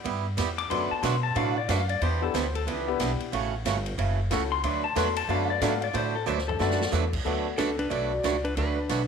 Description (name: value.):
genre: country, western swing.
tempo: 183 BPM.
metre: 4/4.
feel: swing 62% on 8ths.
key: D major.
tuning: A4 = 441 Hz.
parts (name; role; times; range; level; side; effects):
picked swing-style acoustic guitar; accompaniment; 0.0-9.0 s; C#3 to B4; -30 LUFS; right 11 dB; none.
upright bass; bass; 0.0-9.1 s; F#1 to B2; -30 LUFS; equal; none.
swinging big-band drum kit; drums; 0.1-9.0 s; crash cymbal, hi-hat, kick drum, ride cymbal, snare drum, toms; -36 LUFS; left 1 dB; none.
pedal steel guitar; second line; 0.6-6.9 s; A4 to D6; -30 LUFS; left 7 dB; none.
clear upright piano; accompaniment; 0.7-8.2 s; A3 to B4; -33 LUFS; left 11 dB; none.
clean lap steel guitar; melody; 7.6-9.1 s; D4 to D5; -28 LUFS; left 1 dB; none.
room: moderate echo chamber reverb, RT60 1.3 s, small room ambience.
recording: 1960s-style stereo with parts hard left and right.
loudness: -24 LUFS.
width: side -6 dB against mid.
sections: 0.0-7.3 A section; 7.3-9.1 B section.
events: pedal steel guitar solo 0.0-7.3; drum fill 6.3-6.9.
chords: 0.0 G6; 0.7 D6; 2.0 Em7; 3.3 A6; 4.6 D6.